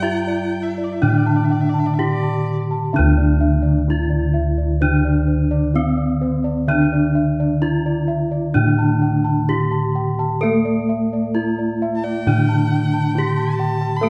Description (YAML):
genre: gamelan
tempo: 65 BPM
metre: 4/4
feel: uneven beats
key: D slendro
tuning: A4 = 440 Hz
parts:
  - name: gamelan-type bronze metallophone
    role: melody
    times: 0.0-14.1 s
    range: C4-45c to A4+25c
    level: -24 LUFS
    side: equal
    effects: slapback echo
  - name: clear erhu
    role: second line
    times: 0.0-2.5, 12.0-14.1 s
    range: D5 to C6-45c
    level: -33 LUFS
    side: equal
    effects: none
  - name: gamelan-type bronze metallophone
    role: accompaniment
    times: 0.0-14.1 s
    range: D3 to A3+25c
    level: -23 LUFS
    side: equal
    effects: none
  - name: gamelan-type bossed gongs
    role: arpeggios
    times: 0.0-14.1 s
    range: C5-45c to A5+25c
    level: -30 LUFS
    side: equal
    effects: none
  - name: gamelan-type bossed gongs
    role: bass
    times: 0.0-14.1 s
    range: D2 to A4+25c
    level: -24 LUFS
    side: equal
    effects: none
room: moderate scoring stage reverb, RT60 1.6 s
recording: dark, warm production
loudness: -19 LUFS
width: mono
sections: 0.0-2.9 A section; 2.9-14.1 B section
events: none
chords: none